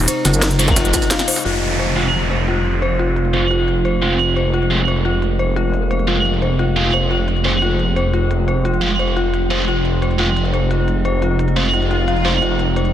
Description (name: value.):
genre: dark technical drum and bass.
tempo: 175 BPM.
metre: 4/4.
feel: straight.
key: F minor.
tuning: A4 = 440 Hz.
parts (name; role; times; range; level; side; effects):
metallic inharmonic drone; sustained chords; 0.0-12.9 s; C3 to F4; -23 LUFS; equal; chorus, built-in reverb, sidechain pumping.
snarling distorted saw bass; bass; 0.0-12.9 s; F1; -19 LUFS; equal; distortion, tube saturation.
dark detuned synth bell; arpeggios; 0.1-12.8 s; F4 to F5; -22 LUFS; left 3 dB; chorus, sidechain pumping, tape echo.
breakbeat sampler-style drum kit; drums; 0.1-1.4 s; ride cymbal, snare drum; -26 LUFS; right 1 dB; none.
drum and bass drum kit; drums; 0.1-12.9 s; crash cymbal, hi-hat, shaker, snare drum; -23 LUFS; equal; low-pass filter on hats, low-pass filter on perc, low-pass filter on snare, low-pass filter on cymbals.
metallic wobble bass; bass; 0.2-0.8 s; Gb1; -16 LUFS; equal; chorus.
thick fuzz guitar; stabs; 0.6-12.3 s; Ab3 to F4; -21 LUFS; right 2 dB; distortion, vintage 12-bit sampler grit, low-pass filter, tape echo.
electronic kick drum; drums; 0.7-1.0 s; none; -19 LUFS; equal; distortion.
downlifter and swell; sound effects; 1.4-4.2, 11.9-12.4 s; none; -24 LUFS; equal; none.
room: moderate lush hall reverb, RT60 2.4 s.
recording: dense, heavily limited modern master.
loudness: -15 LUFS.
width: side -11 dB against mid.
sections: 0.0-1.4 A section; 1.4-12.9 B section.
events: drop 0.0-1.4; band accent 1.1; swell 11.9-12.4.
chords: 0.0 Fm.